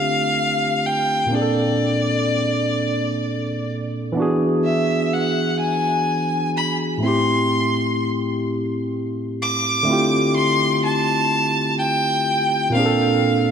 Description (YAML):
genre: R&B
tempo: 42 BPM (dotted quarters)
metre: 6/8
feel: straight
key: D minor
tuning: A4 = 440 Hz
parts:
  - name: rich violin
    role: melody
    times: 0.0-13.5 s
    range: D5 to D6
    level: -21 LUFS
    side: left 1 dB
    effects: none
  - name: barky tine electric piano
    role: accompaniment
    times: 0.0-13.5 s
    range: A2 to A4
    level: -20 LUFS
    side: right 1 dB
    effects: none
room: wet lush hall reverb, RT60 2.7 s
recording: dreamy mix soaked in reverb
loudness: -18 LUFS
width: side -7 dB against mid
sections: 0.0-9.9 A section; 9.9-13.5 B section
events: none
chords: 0.0 Dm7; 1.3 Bbmaj9; 4.2 E7; 7.0 Am7; 9.9 Dm11; 12.7 Bbmaj9